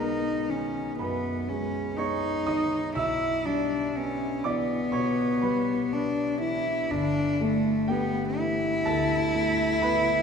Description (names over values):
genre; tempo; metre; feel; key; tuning
classical, impressionist duo for cello and grand piano; 61 BPM; 4/4; rubato; unclear; A4 = 438 Hz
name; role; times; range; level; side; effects
warm cello; melody; 0.0-10.2 s; A3 to E4; -26 LUFS; left 1 dB; none
warm concert grand piano; accompaniment; 0.0-10.2 s; G1 to E6; -29 LUFS; right 1 dB; none
room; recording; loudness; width
wet church reverb, RT60 3.8 s; recorded in a church or concert hall; -24 LUFS; side -6 dB against mid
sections
0.0-10.2 A section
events
none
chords
0.0 B69; 3.0 Em7/B; 6.9 G69